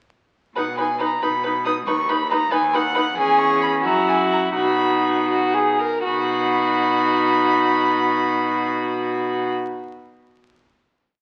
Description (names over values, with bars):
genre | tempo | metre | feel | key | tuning
quick classical-period movement for string quartet | 78-93 BPM (dotted quarters) | 6/8 | straight | B major | A4 = 439 Hz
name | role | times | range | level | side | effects
warm violin | melody | 0.6-9.5 s | F#5 to D#6 | -24 LUFS | equal | none
warm violin | second line | 0.6-9.5 s | F#4 to B4 | -24 LUFS | equal | none
warm viola | accompaniment | 0.6-9.5 s | C#4 to E4 | -26 LUFS | equal | none
rich cello | bass | 0.6-9.5 s | D#2 to B2 | -31 LUFS | equal | none
room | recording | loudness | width
wet large studio reverb, RT60 1.4 s | very old 78 rpm record, vinyl crackle | -20 LUFS | mono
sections
0.6-6.1 A section; 6.1-9.1 final chord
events
slowing down 2.5-6.1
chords
0.6 B; 1.9 B/D#; 3.2 C#m/E; 3.9 F#7; 4.6 B